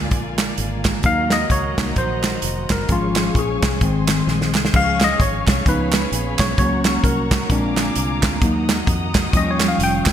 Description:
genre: uptempo gospel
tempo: 130 BPM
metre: 4/4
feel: swing 59% on 8ths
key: Db major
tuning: A4 = 440 Hz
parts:
  - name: mellow tonewheel organ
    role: sustained chords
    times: 0.0-10.1 s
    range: D3 to Ab4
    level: -30 LUFS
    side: right 2 dB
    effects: fast rotary speaker, chorus vibrato
  - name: muted studio string section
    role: sustained chords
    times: 0.0-10.1 s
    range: Bb4 to Eb6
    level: -28 LUFS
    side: left 3 dB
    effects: none
  - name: fingered electric bass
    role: bass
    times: 0.0-10.1 s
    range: F1 to F2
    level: -25 LUFS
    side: equal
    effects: none
  - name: natural country drum kit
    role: drums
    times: 0.1-10.1 s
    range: hi-hat, kick drum, snare drum, splash cymbal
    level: -20 LUFS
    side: right 1 dB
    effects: none
  - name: group handclap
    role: percussion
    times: 0.4-10.1 s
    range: none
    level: -28 LUFS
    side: right 6 dB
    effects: none
  - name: mellow tine electric piano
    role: accompaniment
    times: 1.1-10.1 s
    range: Eb3 to G5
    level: -20 LUFS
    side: left 2 dB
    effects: overdrive
room: moderate lush hall reverb, RT60 1.8 s, small room ambience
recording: bright 1980s-style digital production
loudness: -16 LUFS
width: side -10 dB against mid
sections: 0.0-10.1 A section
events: tine electric piano solo 0.0-10.1; drum fill 4.3-4.7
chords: 0.0 Bb7; 1.0 Ebm; 2.9 Db/Ab; 3.8 Ab; 4.7 Db; 5.7 Db7; 6.6 Gb/Db; 7.5 Bb7; 8.4 Ebm; 9.3 Eb9

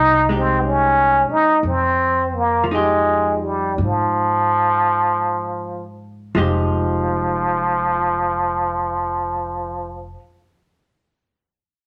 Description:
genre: jazz ballad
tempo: 42-63 BPM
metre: 4/4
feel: swing 68% on 8ths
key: F minor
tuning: A4 = 440 Hz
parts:
  - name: trombone with plunger mute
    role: melody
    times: 0.0-10.2 s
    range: F3 to Eb4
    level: -20 LUFS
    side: equal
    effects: none
  - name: vintage hollow-body jazz guitar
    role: accompaniment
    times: 0.0-10.2 s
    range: F3 to G4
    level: -26 LUFS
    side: equal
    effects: none
  - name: upright bass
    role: bass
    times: 0.0-10.1 s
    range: F1 to Ab2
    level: -28 LUFS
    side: equal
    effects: none
room: moderate studio reverb, RT60 0.9 s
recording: none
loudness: -19 LUFS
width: mono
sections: 0.0-6.4 A section; 6.4-11.9 B section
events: slowing down 0.0-6.4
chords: 0.0 Fm9

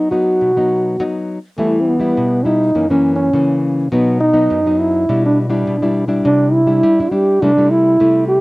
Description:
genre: samba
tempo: 103 BPM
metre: 4/4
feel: straight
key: E minor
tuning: A4 = 440 Hz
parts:
  - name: dark trombone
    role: melody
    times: 0.0-8.4 s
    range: A3 to G4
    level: -14 LUFS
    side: right 1 dB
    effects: cassette tape
  - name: nylon-string guitar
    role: accompaniment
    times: 0.0-8.4 s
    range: F#2 to E4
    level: -17 LUFS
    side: left 1 dB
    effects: cassette tape
room: moderate booth ambience, RT60 0.2 s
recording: home recording on cassette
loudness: -12 LUFS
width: side -21 dB against mid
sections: 0.0-8.4 A section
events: none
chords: 0.0 B; 1.6 Em; 2.8 F#7; 3.9 B; 5.1 Em7/B; 6.3 Cadd9; 7.4 Am7/C

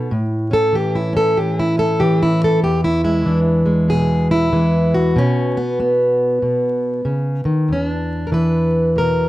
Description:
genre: acoustic country blues, solo or duo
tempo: 95 BPM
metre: 4/4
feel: swing 62% on 8ths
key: E mixolydian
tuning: A4 = 439 Hz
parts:
  - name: fingerpicked plugged-in steel-string acoustic guitar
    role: solo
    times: 0.0-9.3 s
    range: E2 to B4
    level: -15 LUFS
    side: equal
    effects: none
room: little or no reverb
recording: dry, close 1970s-style studio recording, vinyl crackle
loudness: -15 LUFS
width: side -16 dB against mid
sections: 0.0-7.7 A section; 7.7-9.3 B section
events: steel-string acoustic guitar solo 0.0-7.7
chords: 0.1 A; 2.6 E7; 5.2 N.C.; 7.7 E5

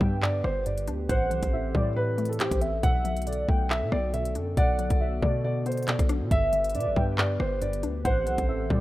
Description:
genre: hip hop, drill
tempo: 138 BPM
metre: 4/4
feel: half-time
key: B phrygian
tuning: A4 = 440 Hz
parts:
  - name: dark concert grand piano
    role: melody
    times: 0.0-8.8 s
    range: G4 to F#5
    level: -31 LUFS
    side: right 1 dB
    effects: none
  - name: warm velvety synth lead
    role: second line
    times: 0.0-8.8 s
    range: C5 to G5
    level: -32 LUFS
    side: equal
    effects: chorus, tape echo
  - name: hollow square pluck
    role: accompaniment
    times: 0.0-8.8 s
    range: G2 to D4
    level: -34 LUFS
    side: left 1 dB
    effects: chorus
  - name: dark analog pad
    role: sustained chords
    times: 0.0-8.8 s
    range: D3 to B4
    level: -35 LUFS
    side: equal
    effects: chorus
  - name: hard-hitting 808-style bass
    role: bass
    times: 0.0-8.8 s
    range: G1 to B2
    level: -29 LUFS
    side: equal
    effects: none
  - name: drill drum kit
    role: drums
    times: 0.0-8.8 s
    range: handclaps, hi-hat, kick drum, rim click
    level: -28 LUFS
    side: equal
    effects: none
room: light reverb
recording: rough home demo mix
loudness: -24 LUFS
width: side -16 dB against mid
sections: 0.0-8.8 A section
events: none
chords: 0.0 G; 1.1 Am7; 2.8 Bm7; 6.3 G; 8.1 Am7

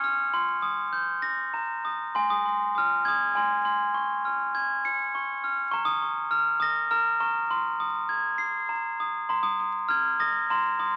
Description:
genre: children's music, lullaby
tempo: 100 BPM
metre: 3/4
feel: straight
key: Ab major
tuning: A4 = 437 Hz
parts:
  - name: glockenspiel with soft plastic mallets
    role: solo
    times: 0.0-11.0 s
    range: Ab5 to Db7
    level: -26 LUFS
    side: equal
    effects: none
room: wet large studio reverb, RT60 1.2 s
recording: very old 78 rpm record, vinyl crackle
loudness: -26 LUFS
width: mono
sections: 0.0-2.1 A section; 2.1-11.0 B section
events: none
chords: 0.3 Cm; 0.9 Eb; 2.1 Ab; 3.9 Db; 5.7 Bbm; 7.5 Ab; 8.7 Eb5; 9.3 Absus2

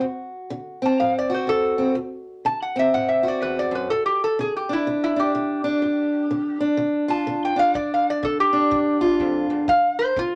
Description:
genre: acoustic country blues, solo or duo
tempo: 124 BPM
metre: 4/4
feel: swing 60% on 8ths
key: unclear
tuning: A4 = 440 Hz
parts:
  - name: fingerpicked steel-string acoustic guitar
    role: accompaniment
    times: 0.0-10.4 s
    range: D2 to F#4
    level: -25 LUFS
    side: equal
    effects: none
  - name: metal-body resonator slide guitar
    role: melody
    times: 0.9-10.4 s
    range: E4 to A5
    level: -24 LUFS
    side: equal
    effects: none
  - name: kick drum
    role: drums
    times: 7.8-10.3 s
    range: none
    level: -42 LUFS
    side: equal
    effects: none
room: wet small room reverb, RT60 0.6 s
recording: none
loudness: -22 LUFS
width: mono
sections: 0.0-10.4 A section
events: resonator guitar played with a steel bar solo 0.0-10.4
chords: 0.0 D7; 3.9 G5; 9.7 D7(no3)

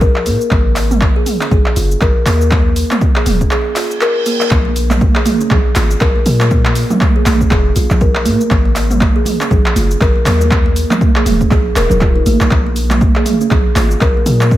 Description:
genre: afro house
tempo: 120 BPM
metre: 4/4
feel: swing 59% on 16ths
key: Bb minor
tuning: A4 = 444 Hz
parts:
  - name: kalimba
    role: arpeggios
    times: 0.0-14.4 s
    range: Bb3 to Bb4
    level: -18 LUFS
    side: equal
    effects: sidechain pumping, ping-pong delay
  - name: warm 808-style bass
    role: bass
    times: 0.0-14.6 s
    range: Eb1 to Bb2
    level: -15 LUFS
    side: equal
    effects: sidechain pumping
  - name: deep house drum kit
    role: drums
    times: 0.0-14.6 s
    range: handclaps, hi-hat, shaker, toms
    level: -19 LUFS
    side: right 1 dB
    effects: overdrive
  - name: electronic kick drum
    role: drums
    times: 0.0-14.6 s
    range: none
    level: -14 LUFS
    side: equal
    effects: overdrive
  - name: reverse cymbal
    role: sound effects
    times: 3.8-4.5 s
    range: none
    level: -24 LUFS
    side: right 6 dB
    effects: none
  - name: congas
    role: percussion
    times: 4.7-14.5 s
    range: none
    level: -19 LUFS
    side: right 5 dB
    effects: none
room: light reverb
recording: none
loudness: -10 LUFS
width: side -14 dB against mid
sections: 0.0-14.6 A section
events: break 3.5-4.5; reverse cymbal 3.8-4.5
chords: 0.0 N.C.; 0.5 Ab5; 2.5 Eb5; 4.5 Bb7(no3); 8.5 Ab5; 10.5 Eb5; 12.5 Bb7(no3)

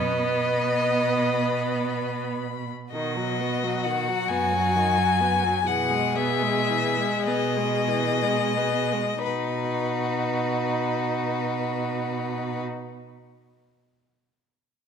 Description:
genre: classical, slow romantic movement for string quartet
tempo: 27-45 BPM (dotted quarters)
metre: 6/8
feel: rubato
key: B major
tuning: A4 = 438 Hz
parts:
  - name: clear violin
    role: melody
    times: 0.0-12.6 s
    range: B4 to B5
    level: -27 LUFS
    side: left 6 dB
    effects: none
  - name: rich violin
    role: second line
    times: 0.0-12.6 s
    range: F#4 to D#5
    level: -29 LUFS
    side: left 2 dB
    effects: none
  - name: clear viola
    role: accompaniment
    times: 0.0-12.6 s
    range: D#3 to D#4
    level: -29 LUFS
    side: right 2 dB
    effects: none
  - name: rich cello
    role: bass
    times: 0.0-12.6 s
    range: F#2 to B2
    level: -29 LUFS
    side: right 6 dB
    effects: none
room: moderate scoring stage reverb, RT60 1.8 s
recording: none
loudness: -22 LUFS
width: side -7 dB against mid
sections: 0.0-2.9 A section; 2.9-9.3 B section; 9.3-12.9 C section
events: slowing down 1.4-9.3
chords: 0.0 B; 5.7 E/B; 9.3 B

